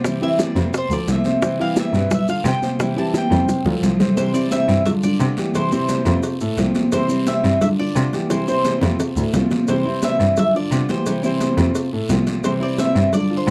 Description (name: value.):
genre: latin, Cuban son and guajira.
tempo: 174 BPM.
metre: 4/4.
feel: straight.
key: C major.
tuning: A4 = 440 Hz.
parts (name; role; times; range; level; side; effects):
Cuban tres; melody; 0.0-13.5 s; C5 to A5; -26 LUFS; equal; none.
nylon-string guitar; accompaniment; 0.0-13.5 s; C3 to F4; -27 LUFS; equal; none.
dark concert grand piano; arpeggios; 0.0-13.5 s; A2 to C5; -26 LUFS; equal; none.
bongos and cowbell; percussion; 0.0-13.5 s; none; -29 LUFS; equal; none.
congas; percussion; 0.0-13.5 s; none; -26 LUFS; equal; none.
guiro; percussion; 0.0-13.5 s; none; -39 LUFS; equal; none.
maracas; percussion; 0.1-13.5 s; none; -40 LUFS; equal; none.
warm cello; bass; 0.6-13.5 s; C2 to C3; -23 LUFS; equal; none.
room: light reverb.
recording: dry, close 1970s-style studio recording.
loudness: -19 LUFS.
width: mono.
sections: 0.0-4.2 A section; 4.2-13.5 B section.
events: Cuban tres solo 0.0-4.2; drum fill 2.8-4.2, 8.3-9.7.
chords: 0.0 C; 0.7 F; 1.4 C; 2.1 G7; 2.8 C; 3.5 F; 4.2 C; 4.9 G7; 5.6 C; 6.2 F; 6.9 C; 7.6 G7; 8.3 C; 9.0 F; 9.7 C; 10.4 G7; 11.1 C; 11.8 F; 12.4 C.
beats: | 0.05 0.39 0.73 1.08 | 1.42 1.77 2.11 2.46 | 2.80 3.14 3.49 3.83 | 4.17 4.52 4.86 5.21 | 5.55 5.89 6.24 6.58 | 6.93 7.27 7.62 7.96 | 8.30 8.65 8.99 9.34 | 9.68 10.03 10.37 10.72 | 11.06 11.41 11.75 12.10 | 12.44 12.79 13.13 13.48.